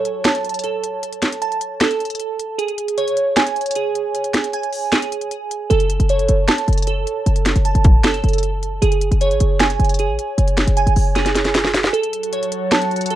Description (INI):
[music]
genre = hip hop, trap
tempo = 154 BPM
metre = 4/4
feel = half-time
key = F# minor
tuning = A4 = 440 Hz
[part]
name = glassy digital keys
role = arpeggios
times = 0.0-13.2 s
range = G#4 to A5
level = -20 LUFS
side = right 4 dB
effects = chorus, ping-pong delay
[part]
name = trap drum kit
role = drums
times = 0.1-13.2 s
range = finger snaps, hi-hat, kick drum, snare drum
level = -18 LUFS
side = equal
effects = none
[part]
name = short 808-style bass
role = bass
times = 5.7-11.9 s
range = F#1 to A1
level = -17 LUFS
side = equal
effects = none
[part]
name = glassy FM pad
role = sustained chords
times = 12.2-13.2 s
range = F#3 to C#5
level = -29 LUFS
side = left 1 dB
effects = ensemble chorus, built-in reverb
[sound]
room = light reverb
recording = dark, warm production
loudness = -16 LUFS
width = side -13 dB against mid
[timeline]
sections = 0.0-13.2 A section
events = break 0.0-5.7, 11.9-13.2; drum fill 11.2-11.9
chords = 0.0 A; 2.6 C#5; 5.7 F#m; 8.8 C#5/F#; 11.9 F#m